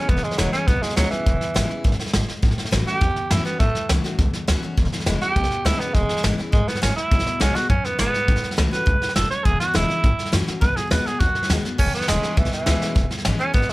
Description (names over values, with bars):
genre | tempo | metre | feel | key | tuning
rockabilly | 205 BPM | 4/4 | straight | E major | A4 = 441 Hz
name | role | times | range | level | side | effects
raspy tenor saxophone | melody | 0.0-13.7 s | E3 to C#5 | -24 LUFS | right 2 dB | none
picked steel-string acoustic guitar | accompaniment | 0.0-13.7 s | E2 to F#4 | -28 LUFS | left 3 dB | none
upright bass | bass | 0.1-13.7 s | E1 to F#2 | -23 LUFS | equal | none
vintage brush drum kit | drums | 0.1-13.7 s | crash cymbal, hi-hat, kick drum, snare drum | -22 LUFS | equal | none
room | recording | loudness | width
little or no reverb | none | -18 LUFS | side -20 dB against mid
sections
0.0-11.8 A section; 11.8-13.7 A section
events
none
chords
0.0 E6; 2.4 A6; 4.8 E6; 7.1 B6; 8.3 A6; 9.5 E6; 10.0 A6; 10.6 B6; 11.8 E6